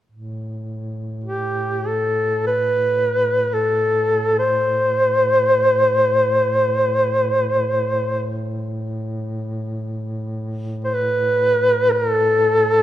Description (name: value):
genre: caucasian folk, Caucasian lament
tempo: free time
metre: none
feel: none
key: A minor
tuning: A4 = 440 Hz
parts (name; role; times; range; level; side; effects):
- dark duduk; drone; 0.1-12.8 s; A2; -26 LUFS; equal; none
- mellow duduk; melody; 1.2-12.8 s; G4 to C5; -16 LUFS; equal; none
room: light reverb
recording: minimal, uncompressed stereo recording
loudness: -17 LUFS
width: side -12 dB against mid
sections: 0.1-12.8 A section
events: none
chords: none